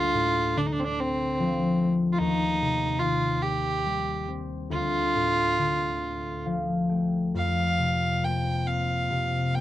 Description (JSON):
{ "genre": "celtic folk, Celtic slow air", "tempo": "45-49 BPM (dotted quarters)", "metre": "6/8", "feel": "rubato", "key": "unclear", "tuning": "A4 = 439 Hz", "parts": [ { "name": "warm fiddle", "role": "melody", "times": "0.0-9.6 s", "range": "C4 to G5", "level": "-26 LUFS", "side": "right 2 dB", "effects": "none" }, { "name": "concert harp", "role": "accompaniment", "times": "0.0-9.6 s", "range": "D2 to G5", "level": "-26 LUFS", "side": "left 2 dB", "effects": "none" } ], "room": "little or no reverb", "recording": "dry, close 1970s-style studio recording", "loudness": "-24 LUFS", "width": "side -14 dB against mid", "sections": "0.0-7.3 A section; 7.3-9.6 B section", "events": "harp fill 6.0-7.3", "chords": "0.0 Dm7; 2.2 Cm/Eb; 4.7 Dm; 7.3 Fsus4" }